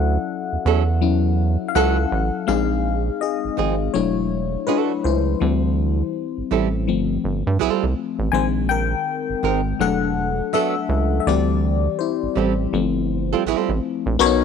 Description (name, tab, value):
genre	R&B, neo-soul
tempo	82 BPM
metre	4/4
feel	swing 62% on 16ths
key	unclear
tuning	A4 = 436 Hz
part	FM electric piano	accompaniment	0.0-14.4 s	D#3 to G#5	-21 LUFS	left 10 dB	chorus
part	rubbery square bass	bass	0.0-14.4 s	E1 to G2	-21 LUFS	right 2 dB	none
part	flamenco guitar	second line	0.7-13.7 s	E#3 to A#4	-22 LUFS	right 14 dB	none
room	light reverb, studio ambience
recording	1960s-style stereo with parts hard left and right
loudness	-18 LUFS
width	side -7 dB against mid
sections	0.0-2.5 A section; 2.5-14.2 B section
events	FM electric piano solo 0.0-2.5, 2.5-14.2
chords	0.0 Dmaj9; 2.5 A#9sus4; 3.9 E9sus4; 5.4 D9sus4; 6.9 G9sus4; 8.3 A#9sus4; 9.8 E9sus4; 11.3 D9sus4; 12.7 G9sus4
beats	0.28 1.01 1.74 | 2.47 3.21 3.94 4.67 | 5.40 6.13 6.86 7.59 | 8.33 9.06 9.79 10.52 | 11.25 11.98 12.72 13.45 | 14.18